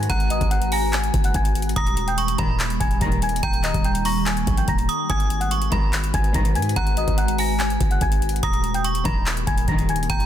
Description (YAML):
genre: hip hop, trap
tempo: 144 BPM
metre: 4/4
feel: half-time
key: G# minor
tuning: A4 = 441 Hz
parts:
  - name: small celesta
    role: melody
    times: 0.0-10.3 s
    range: D#5 to A#6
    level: -27 LUFS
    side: left 3 dB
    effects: low-pass filter, tape echo
  - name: glassy FM pad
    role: sustained chords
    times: 0.0-10.3 s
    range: D#3 to B4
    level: -28 LUFS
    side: equal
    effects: ensemble chorus, built-in reverb
  - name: dark symphonic string section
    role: stabs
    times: 0.0-10.1 s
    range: A#1 to D#3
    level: -29 LUFS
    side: left 2 dB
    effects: none
  - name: hard-hitting 808-style bass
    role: bass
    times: 0.0-10.3 s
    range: D#1 to G#2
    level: -24 LUFS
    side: equal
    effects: none
  - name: booming analog drum machine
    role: drums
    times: 0.0-10.3 s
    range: handclaps, hi-hat, kick drum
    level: -23 LUFS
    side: equal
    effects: none
  - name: metallic FM bell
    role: second line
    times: 0.1-10.3 s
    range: G#5 to D#6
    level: -29 LUFS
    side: right 5 dB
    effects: chorus, tape echo
room: digital ambience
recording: dense, heavily limited modern master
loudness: -19 LUFS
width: side -11 dB against mid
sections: 0.0-10.3 A section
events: none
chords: 0.0 G#m7; 1.8 D#; 5.1 G#m7; 8.4 D#